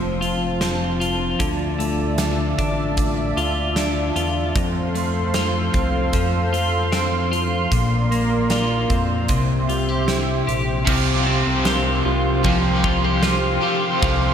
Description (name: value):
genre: dream pop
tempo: 76 BPM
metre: 4/4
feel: straight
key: unclear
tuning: A4 = 440 Hz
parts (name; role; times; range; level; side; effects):
- warm analog pad; sustained chords; 0.0-14.3 s; F4 to C6; -25 LUFS; right 2 dB; chorus
- clean electric guitar; arpeggios; 0.0-14.3 s; F2 to G4; -22 LUFS; left 3 dB; wide subtle chorus, ping-pong delay
- chorused synth bass; bass; 0.0-14.3 s; F1 to F2; -25 LUFS; right 1 dB; none
- huge arena drum kit; drums; 0.2-14.2 s; crash cymbal, hi-hat, kick drum, ride cymbal, snare drum, tambourine; -25 LUFS; right 1 dB; gated reverb
- crunchy overdriven guitar; accompaniment; 10.8-14.3 s; C3 to G4; -23 LUFS; right 2 dB; tremolo, lush chorus
- vibraphone with soft mallets; texture; 11.7-14.3 s; A4 to Bb4; -36 LUFS; right 1 dB; none
room: moderate lush hall reverb, RT60 2.5 s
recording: bright 1980s-style digital production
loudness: -18 LUFS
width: side -8 dB against mid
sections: 0.0-10.9 A section; 10.9-14.3 B section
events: none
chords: 0.0 F; 1.4 Dmadd9; 4.6 F; 7.7 Bbadd9; 9.3 C; 10.9 Csus4